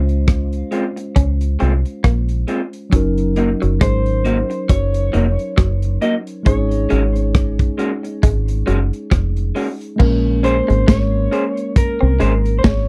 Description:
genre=lovers rock reggae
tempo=68 BPM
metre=4/4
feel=swing 56% on 16ths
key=unclear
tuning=A4 = 442 Hz
part: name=electric guitar through a small old amp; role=melody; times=0.0-12.9 s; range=Bb4 to Eb5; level=-26 LUFS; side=equal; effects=none
part: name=mellow tine electric piano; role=accompaniment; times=0.0-12.9 s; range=Gb3 to C5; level=-26 LUFS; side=equal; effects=none
part: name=electric guitar through a small old amp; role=riff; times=0.0-12.9 s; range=F3 to Db4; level=-28 LUFS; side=equal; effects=none
part: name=deep dub fingered electric bass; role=bass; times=0.0-12.9 s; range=F1 to Db2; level=-20 LUFS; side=equal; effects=none
part: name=crunchy breakbeat drum kit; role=drums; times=0.1-12.9 s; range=crash cymbal, hi-hat, kick drum, rim click, snare drum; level=-17 LUFS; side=equal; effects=none
part: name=electric guitar through a small old amp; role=stabs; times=0.7-12.3 s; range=Ab3 to C5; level=-23 LUFS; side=equal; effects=none
room=little or no reverb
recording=dry, close 1970s-style studio recording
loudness=-17 LUFS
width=mono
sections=0.0-10.0 A section; 10.0-12.9 B section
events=none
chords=0.0 Dbmaj7; 2.9 Gb6; 6.5 Ab7sus4; 10.0 Bbm9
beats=0.28 1.16 2.04 | 2.93 3.81 4.69 5.58 | 6.46 7.34 8.23 9.11 | 9.99 10.88 11.76 12.64

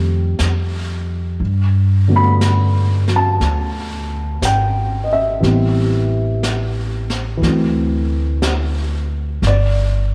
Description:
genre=jazz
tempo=60 BPM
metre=4/4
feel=swing 68% on 8ths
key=G major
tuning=A4 = 437 Hz
part: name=dark baby grand piano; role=accompaniment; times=0.0-10.1 s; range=D3 to B5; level=-22 LUFS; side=equal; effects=none
part: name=upright bass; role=bass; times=0.0-10.1 s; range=G1 to G2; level=-19 LUFS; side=equal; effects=none
part: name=jazz brush drum kit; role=drums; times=0.4-10.1 s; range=brushed snare drum, hi-hat, snare drum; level=-29 LUFS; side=equal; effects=none
room=light reverb, studio ambience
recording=none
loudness=-17 LUFS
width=mono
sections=0.0-10.1 A section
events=none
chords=0.0 F9; 1.4 Gmaj7; 5.4 Am9; 7.4 D9; 9.4 G5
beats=0.39 | 1.40 2.41 3.41 4.42 | 5.42 6.42 7.42 8.42 | 9.42

